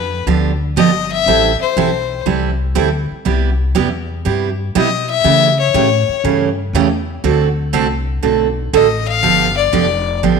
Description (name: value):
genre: country, western swing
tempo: 120 BPM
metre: 4/4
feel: swing 69% on 8ths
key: unclear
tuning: A4 = 440 Hz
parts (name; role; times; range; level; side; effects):
- clear fiddle; melody; 0.0-10.2 s; B4 to F5; -15 LUFS; left 10 dB; none
- upright bass; bass; 0.0-10.4 s; F1 to C#3; -19 LUFS; left 2 dB; none
- picked steel-string acoustic guitar; accompaniment; 0.3-10.4 s; C3 to A4; -16 LUFS; right 9 dB; none
room: wet echo chamber reverb, RT60 1.4 s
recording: 1960s-style stereo with parts hard left and right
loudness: -13 LUFS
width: side -5 dB against mid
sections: 0.0-10.4 A section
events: fiddle solo 0.0-10.4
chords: 0.0 G7; 1.3 Am7; 3.3 Cmaj7; 5.2 A7; 7.2 D7; 9.2 G9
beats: 0.27 0.77 | 1.26 1.76 2.26 2.76 | 3.26 3.75 4.25 4.75 | 5.25 5.75 6.25 6.74 | 7.24 7.74 8.24 8.74 | 9.23 9.73 10.23